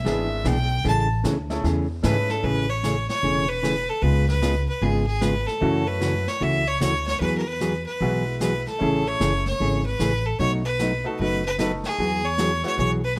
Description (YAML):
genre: country, western swing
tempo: 151 BPM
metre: 4/4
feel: swing 65% on 8ths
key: A major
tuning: A4 = 442 Hz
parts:
  - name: clear fiddle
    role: second line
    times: 0.0-1.0 s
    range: E5 to A5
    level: -30 LUFS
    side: equal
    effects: none
  - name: bright upright piano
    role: accompaniment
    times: 0.0-2.4, 5.6-13.2 s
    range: G#3 to B4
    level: -34 LUFS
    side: equal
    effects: none
  - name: upright bass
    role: bass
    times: 0.0-13.2 s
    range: E1 to G#2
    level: -28 LUFS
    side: equal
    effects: none
  - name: hollow-body jazz guitar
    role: accompaniment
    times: 0.1-13.0 s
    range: B2 to G#4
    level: -28 LUFS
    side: equal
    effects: none
  - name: vintage brush drum kit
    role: drums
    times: 0.1-13.2 s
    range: brushed snare drum, hi-hat, snare drum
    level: -36 LUFS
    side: equal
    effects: none
  - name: clear fiddle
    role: melody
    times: 2.0-13.2 s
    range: G#4 to E5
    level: -28 LUFS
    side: equal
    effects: none
room: light reverb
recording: none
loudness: -23 LUFS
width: mono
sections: 0.0-2.4 A section; 2.4-13.2 B section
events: fiddle solo 0.0-2.4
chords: 0.0 E7; 0.8 Amaj7; 4.0 C#7; 5.6 F#m7; 7.2 Eadd9; 8.8 Amaj7; 10.4 B7; 12.0 Eadd9